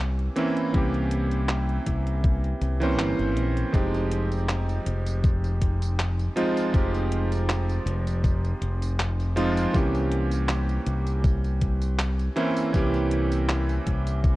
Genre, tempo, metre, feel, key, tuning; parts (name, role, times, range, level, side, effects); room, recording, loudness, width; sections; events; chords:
vaporwave; 80 BPM; 4/4; swing 54% on 16ths; F minor; A4 = 441 Hz
bright electric grand piano; accompaniment; 0.0-14.4 s; E3 to C5; -27 LUFS; right 2 dB; lush chorus, analog delay
modern bright fingered electric bass; bass; 0.0-14.4 s; F1 to C2; -26 LUFS; equal
detuned 8-bit digital drum machine; drums; 0.2-14.4 s; handclaps, hi-hat, tambourine; -32 LUFS; equal; overdrive, vintage 12-bit sampler grit
electronic kick drum; drums; 0.7-14.4 s; -23 LUFS; equal; vintage 12-bit sampler grit
digital ambience; dark, warm production, cassette tape; -22 LUFS; side -18 dB against mid
0.0-14.4 A section
0.0 C7b9; 3.7 Fm9; 9.7 C7b9